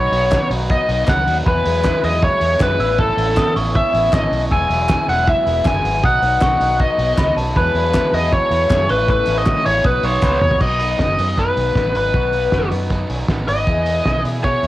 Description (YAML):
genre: jangly indie pop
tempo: 157 BPM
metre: 4/4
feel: straight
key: B mixolydian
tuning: A4 = 441 Hz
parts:
  - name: biting lead guitar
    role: melody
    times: 0.0-14.7 s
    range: A4 to G#5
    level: -17 LUFS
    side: left 1 dB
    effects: overdrive, cassette tape
  - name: glockenspiel with rubber mallets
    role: second line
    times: 0.0-10.6 s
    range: A5 to E6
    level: -28 LUFS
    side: right 2 dB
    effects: cassette tape
  - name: overdriven electric guitar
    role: accompaniment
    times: 0.0-14.7 s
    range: E2 to C#5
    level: -26 LUFS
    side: right 3 dB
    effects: cassette tape
  - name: electric guitar through a small old amp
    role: arpeggios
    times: 0.0-14.7 s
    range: D#3 to A4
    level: -28 LUFS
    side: left 4 dB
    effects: phaser, cassette tape
  - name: vintage muted fingered electric bass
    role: bass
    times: 0.0-14.7 s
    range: E1 to B2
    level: -22 LUFS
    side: equal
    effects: none
  - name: cloth-damped thuddy drum kit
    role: drums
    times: 0.1-14.7 s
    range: crash cymbal, hi-hat, kick drum, snare drum, toms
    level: -21 LUFS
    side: equal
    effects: cassette tape
  - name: group handclap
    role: percussion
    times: 0.3-10.3 s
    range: none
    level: -33 LUFS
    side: left 1 dB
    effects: none
room: light reverb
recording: home recording on cassette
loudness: -14 LUFS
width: side -15 dB against mid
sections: 0.0-10.6 A section; 10.6-14.7 B section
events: drum fill 10.2-10.6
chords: 0.0 B; 1.5 Eadd9; 2.8 Aadd9; 4.5 Eadd9; 6.0 B; 7.6 Eadd9; 8.9 Aadd9; 9.8 Badd9; 10.6 B; 13.7 E